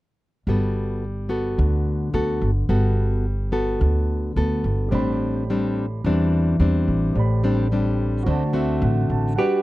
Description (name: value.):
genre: bossa nova.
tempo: 108 BPM.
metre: 4/4.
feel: straight.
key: G major.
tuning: A4 = 442 Hz.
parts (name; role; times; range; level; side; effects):
nylon-string guitar; accompaniment; 0.5-9.6 s; A2 to B4; -22 LUFS; left 1 dB; none.
upright bass; bass; 0.5-9.4 s; G1 to E2; -22 LUFS; equal; none.
warm concert grand piano; accompaniment; 4.9-9.6 s; F#4 to B5; -31 LUFS; right 6 dB; none.
hollow-body jazz guitar; melody; 9.4-9.6 s; G4; -21 LUFS; right 4 dB; none.
room: little or no reverb.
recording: dry, close 1970s-style studio recording.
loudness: -19 LUFS.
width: side -17 dB against mid.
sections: 0.5-9.4 A section.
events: grand piano fill 8.3-9.4.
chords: 0.5 Gmaj9; 4.9 Am11; 8.3 D7.